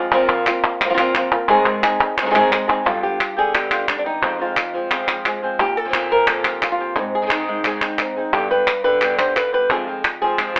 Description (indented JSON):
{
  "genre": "flamenco",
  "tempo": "175 BPM",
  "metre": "4/4",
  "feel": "straight",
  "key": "unclear",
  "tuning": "A4 = 441 Hz",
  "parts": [
    { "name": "flamenco guitar", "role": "melody", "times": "0.0-10.6 s", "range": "F2 to C5", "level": "-21 LUFS", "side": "equal", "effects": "none" },
    { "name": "palmas hand claps", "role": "percussion", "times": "0.1-10.6 s", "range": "none", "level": "-22 LUFS", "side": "equal", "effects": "none" },
    { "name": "flamenco guitar", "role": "stabs", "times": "2.9-10.6 s", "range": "F2 to Ab4", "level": "-28 LUFS", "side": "equal", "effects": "none" }
  ],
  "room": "moderate studio ambience, RT60 0.5 s",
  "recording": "telephone sound",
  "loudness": "-19 LUFS",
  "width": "mono",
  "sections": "0.0-2.9 A section; 2.9-10.6 B section",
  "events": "none",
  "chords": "0.1 Bbsus2; 1.5 Ab; 2.9 G; 4.2 Fm; 5.6 Bbsus2; 7.0 Ab; 8.3 G; 9.7 Fm"
}